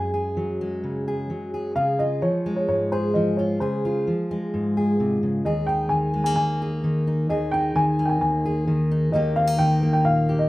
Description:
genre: folk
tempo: 130 BPM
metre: 4/4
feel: straight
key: unclear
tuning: A4 = 437 Hz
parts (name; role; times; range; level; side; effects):
- dark upright piano; melody; 0.0-10.5 s; C5 to Ab5; -24 LUFS; equal; slapback echo
- fingerpicked steel-string acoustic guitar; accompaniment; 0.0-10.5 s; Eb2 to Ab4; -22 LUFS; equal; none
room: wet studio reverb, RT60 0.6 s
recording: rough home demo mix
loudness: -20 LUFS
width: side -18 dB against mid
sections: 0.0-10.5 A section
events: none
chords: 0.0 Gbsus2; 1.8 Db; 5.5 Absus2/Eb; 9.1 Eb

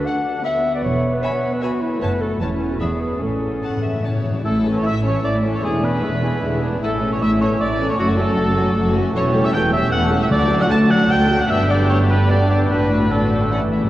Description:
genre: quick classical-period movement for symphony orchestra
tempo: 153 BPM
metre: 3/4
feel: straight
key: A major, D major from 9.1 s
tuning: A4 = 437 Hz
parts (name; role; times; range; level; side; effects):
- warm clarinet; second line; 0.0-4.2 s; E4 to F#5; -25 LUFS; left 2 dB; none
- warm chamber viola section; accompaniment; 0.0-13.7 s; D3 to D4; -22 LUFS; equal; none
- warm chamber violin section; melody; 0.1-13.8 s; F#4 to B5; -29 LUFS; left 3 dB; none
- dark chamber violin section; second line; 0.1-13.7 s; A3 to A5; -26 LUFS; left 2 dB; none
- dark chamber cello section; bass; 0.8-13.7 s; D2 to A2; -23 LUFS; equal; none
- dark chamber double bass section; bass; 0.8-13.7 s; E1 to D2; -24 LUFS; right 1 dB; none
- timpani; percussion; 3.2-4.4, 10.3-10.9, 13.5-13.9 s; A2 to D3; -28 LUFS; left 1 dB; none
- warm cor anglais; second line; 4.5-13.7 s; F#4 to A5; -22 LUFS; right 1 dB; none
room: wet cathedral reverb, RT60 6.7 s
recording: worn, warbling old tape, cassette tape, warbly pitch drift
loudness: -16 LUFS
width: side -14 dB against mid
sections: 0.0-4.5 A section; 4.5-13.9 B section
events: timpani fill 3.2-4.5, 13.5-13.9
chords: 0.0 D; 0.9 E5; 2.0 F#m; 2.4 A/E (rootless); 2.8 E; 3.2 A; 5.6 E7; 6.8 A; 8.0 F#m; 9.1 A7/E; 10.3 D; 11.5 G; 12.7 D/A

